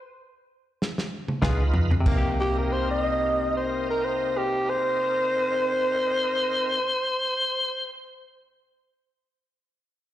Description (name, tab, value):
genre	straight-eighth soul blues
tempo	92 BPM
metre	4/4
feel	swing 55% on 16ths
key	C minor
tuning	A4 = 439 Hz
part	warm soul drum kit	drums	0.8-2.2 s	crash cymbal, kick drum, snare drum, toms	-26 LUFS	equal	none
part	bright tonewheel organ	accompaniment	1.4-6.8 s	C4 to Cb5	-33 LUFS	right 3 dB	chorus vibrato, slow rotary speaker, plate reverb, slapback echo
part	direct-recorded clean electric guitar	stabs	1.4-7.0 s	C3 to Ab4	-32 LUFS	left 4 dB	slapback echo, plate reverb
part	vintage muted fingered electric bass	bass	1.4-6.8 s	C2 to F2	-26 LUFS	equal	none
part	growling tenor saxophone	melody	2.4-8.1 s	G4 to Eb5	-24 LUFS	equal	plate reverb, slapback echo
room	moderate club reverb, RT60 0.5 s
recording	live gig heard through the venue's PA, recital hall reverb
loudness	-22 LUFS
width	side -13 dB against mid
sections	0.0-2.1 A section; 2.1-7.3 B section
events	slowing down 0.0-2.1; stop 0.0-1.4; drum fill 0.8-2.1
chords	0.0 N.C.; 1.4 Db7; 2.1 Cm7